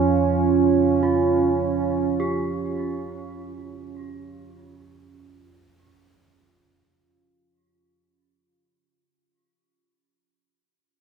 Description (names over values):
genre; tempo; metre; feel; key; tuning
dark ambient drone; 52 BPM; 4/4; straight; unclear; A4 = 441 Hz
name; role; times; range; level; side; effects
deep dark ambient pad; sustained chords; 0.0-7.0 s; Db4 to F4; -22 LUFS; right 5 dB; chorus, built-in reverb
gamelan-type bronze metallophone; arpeggios; 0.0-9.3 s; F3 to G4; -29 LUFS; right 5 dB; diffuse ambient delay
deep rumbling drone; drone; 0.0-7.1 s; F2 to F3; -29 LUFS; left 1 dB; built-in reverb, phaser
room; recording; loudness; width
wet huge ambient reverb, RT60 7.9 s; in a vast, echoing space; -19 LUFS; side -6 dB against mid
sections
0.0-7.0 A section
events
fade-out 0.0-7.0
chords
0.0 Db